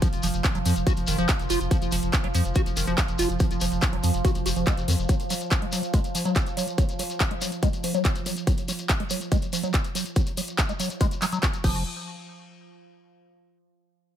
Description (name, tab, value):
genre	psychedelic trance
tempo	142 BPM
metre	4/4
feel	straight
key	F phrygian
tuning	A4 = 439 Hz
part	evolving wavetable pad	sustained chords	0.0-11.6 s	F3	-32 LUFS	right 4 dB	chorus, built-in reverb, sidechain pumping
part	liquid acid bass	riff	0.0-11.8 s	Eb3 to Gb4	-30 LUFS	moving between left 4 dB and right 4 dB	phaser, auto-pan, sidechain pumping, ping-pong delay
part	big-room dance drum kit	drums	0.0-11.7 s	crash cymbal, handclaps, hi-hat	-30 LUFS	equal	none
part	electronic kick drum	drums	0.0-11.7 s	none	-24 LUFS	equal	none
part	shekere	percussion	0.0-11.8 s	none	-34 LUFS	left 4 dB	none
part	round analog bass	bass	0.1-5.1, 11.6-11.8 s	F1 to F2	-27 LUFS	equal	none
room	little or no reverb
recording	none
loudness	-22 LUFS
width	side -10 dB against mid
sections	0.0-11.9 A section; 11.9-13.5 B section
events	filter sweep on acid bass 0.0-11.9; filter sweep on ambient pad 0.0-11.9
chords	none